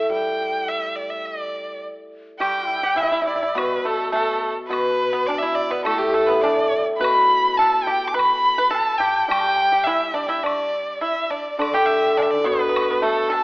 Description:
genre	chinese traditional, Chinese chamber ensemble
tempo	104 BPM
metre	2/4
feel	straight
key	D zhi mode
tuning	A4 = 440 Hz
part	rich erhu	melody	0.0-13.4 s	G4 to D6	-23 LUFS	equal	none
part	hammered dulcimer	accompaniment	0.0-13.4 s	A2 to G3	-25 LUFS	left 1 dB	none
part	mellow hollow xiao	second line	2.4-13.4 s	D4 to B5	-24 LUFS	left 1 dB	none
part	pipa	second line	2.4-13.4 s	A3 to B4	-24 LUFS	right 1 dB	none
part	woodblock	percussion	2.4-13.4 s	none	-30 LUFS	equal	none
room	moderate scoring stage reverb, RT60 1.6 s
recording	AM radio sound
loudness	-18 LUFS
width	side -22 dB against mid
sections	0.0-2.4 A section; 2.4-11.6 B section; 11.6-13.4 C section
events	none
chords	none

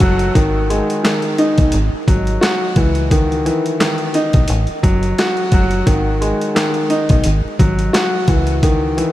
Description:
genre	hip hop, boom-bap hip-hop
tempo	87 BPM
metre	4/4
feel	swing 56% on 16ths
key	unclear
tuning	A4 = 439 Hz
part	warm concert grand piano	accompaniment	0.0-9.1 s	D#3 to F#4	-16 LUFS	equal	high-pass filter, low-pass filter
part	deep dub fingered electric bass	bass	0.0-9.0 s	F#1 to C#2	-18 LUFS	equal	none
part	dusty soul sampler-style drum kit	drums	0.0-9.1 s	handclaps, hi-hat, kick drum, snare drum	-17 LUFS	equal	none
room	moderate huge ambient reverb, RT60 6.0 s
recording	dreamy mix soaked in reverb, vinyl crackle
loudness	-13 LUFS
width	side -14 dB against mid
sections	0.0-5.9 A section; 5.9-9.1 A section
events	none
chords	0.4 G#5; 1.7 F#sus2/G#; 2.8 C#madd9; 4.5 N.C.; 5.9 G#5; 7.2 F#sus2/G#; 8.3 C#madd9

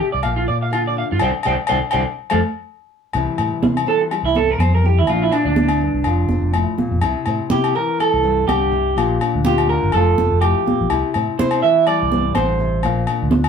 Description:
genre	highlife guitar band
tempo	124 BPM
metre	4/4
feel	swing 55% on 16ths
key	C mixolydian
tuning	A4 = 440 Hz
part	nylon-string guitar	accompaniment	0.0-13.5 s	F2 to G4	-23 LUFS	left 4 dB	none
part	electric guitar through a small old amp	arpeggios	0.0-13.3 s	D4 to G5	-19 LUFS	right 4 dB	none
part	fingered electric bass	bass	0.1-13.5 s	F1 to C3	-20 LUFS	equal	none
part	agogo bells	percussion	0.2-13.5 s	none	-24 LUFS	left 9 dB	none
part	congas	percussion	3.2-13.4 s	none	-23 LUFS	right 3 dB	none
room	moderate studio ambience, RT60 0.5 s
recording	band playing live in one room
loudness	-15 LUFS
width	side -7 dB against mid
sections	0.0-3.1 A section; 3.1-13.5 B section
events	band accent 1.2-3.1; clean electric guitar solo 3.1-13.5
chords	0.2 Bb; 1.2 Csus2; 2.2 Fadd9; 3.1 C; 5.1 Bb; 6.1 F; 7.0 C; 9.0 Bb; 9.9 F; 10.9 C; 12.8 Bb

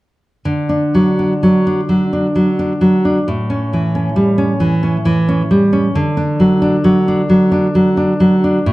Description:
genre	classical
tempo	66 BPM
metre	3/4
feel	rubato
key	D major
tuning	A4 = 444 Hz
part	nylon-string guitar	accompaniment	0.5-8.7 s	A2 to D4	-12 LUFS	equal	none
room	moderate recital hall reverb, RT60 1.7 s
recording	dark, warm production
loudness	-12 LUFS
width	side -19 dB against mid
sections	0.4-8.7 A section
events	none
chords	0.4 D; 3.3 A7; 5.9 D

